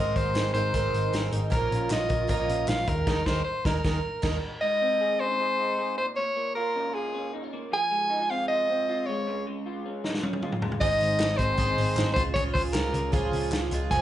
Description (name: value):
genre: jangly indie pop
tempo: 155 BPM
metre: 4/4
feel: straight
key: Ab major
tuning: A4 = 440 Hz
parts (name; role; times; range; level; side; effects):
- warm soprano saxophone; melody; 0.0-14.0 s; Ab4 to Ab5; -27 LUFS; equal; slapback echo
- picked twelve-string acoustic guitar; accompaniment; 0.0-4.4, 10.8-14.0 s; F2 to Bb4; -32 LUFS; right 6 dB; slapback echo
- electric guitar through a small old amp; arpeggios; 0.0-14.0 s; Ab2 to C5; -34 LUFS; left 2 dB; analog chorus, slapback echo
- vintage muted picked electric bass; bass; 0.0-4.4, 10.8-14.0 s; F1 to Eb2; -30 LUFS; left 1 dB; none
- vintage drum kit; drums; 0.2-4.4, 10.0-14.0 s; crash cymbal, hi-hat, kick drum, snare drum, toms; -30 LUFS; equal; none
- group handclap; percussion; 1.9-2.8, 11.2-13.6 s; none; -41 LUFS; left 2 dB; none
room: light reverb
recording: live gig heard through the venue's PA, club ambience, nothing above 10.6 kHz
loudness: -24 LUFS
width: side -12 dB against mid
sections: 0.0-4.6 A section; 4.6-14.0 B section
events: band accent 3.1-4.6; drum fill 10.0-10.8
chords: 0.0 Abadd9; 1.5 Bbm; 2.9 Ebsus4; 4.6 Ab; 6.0 Bbm; 7.7 Fm; 9.3 Db; 10.8 Ab; 12.2 Db